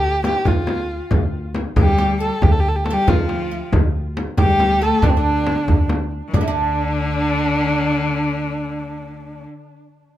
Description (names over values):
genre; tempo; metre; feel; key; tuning
Persian modal ensemble; 92 BPM (dotted quarters); 6/8; straight; unclear; A4 = 442 Hz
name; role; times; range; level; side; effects
dark kamancheh; melody; 0.0-9.4 s; C4 to A4; -21 LUFS; right 1 dB; tape echo
oud; second line; 0.0-9.6 s; D4 to A4; -28 LUFS; right 7 dB; none
upright bass; bass; 0.0-9.4 s; D2; -22 LUFS; equal; none
frame drum; percussion; 0.2-6.5 s; none; -22 LUFS; left 2 dB; none
tombak; percussion; 0.2-6.5 s; none; -21 LUFS; right 2 dB; none
clear cello; second line; 1.8-9.5 s; D3 to A3; -24 LUFS; left 4 dB; none
room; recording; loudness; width
moderate small room reverb, RT60 0.6 s; none; -16 LUFS; side -13 dB against mid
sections
0.0-6.3 A section; 6.3-8.9 B section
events
none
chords
none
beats
0.47 | 1.12 1.77 | 2.42 3.08 | 3.73 4.38 | 5.03 5.69 | 6.34 6.99 | 7.64 8.29